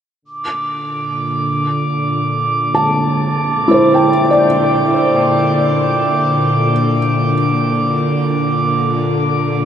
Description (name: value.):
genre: ambient.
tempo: free time.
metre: none.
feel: none.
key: unclear.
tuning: A4 = 440 Hz.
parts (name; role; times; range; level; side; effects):
bowed-like drone; drone; 0.6-9.7 s; Bb2 to D3; -17 LUFS; equal; built-in reverb.
glass harmonica; texture; 0.2-9.7 s; D6; -19 LUFS; right 1 dB; none.
felt-muted upright piano; arpeggios; 2.7-9.7 s; E4 to A5; -16 LUFS; equal; tape echo.
room: wet shimmer reverb, RT60 7.4 s.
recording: none.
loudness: -13 LUFS.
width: side -9 dB against mid.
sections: 0.2-9.7 A section.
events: none.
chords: 0.2 C/Bb.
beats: free time.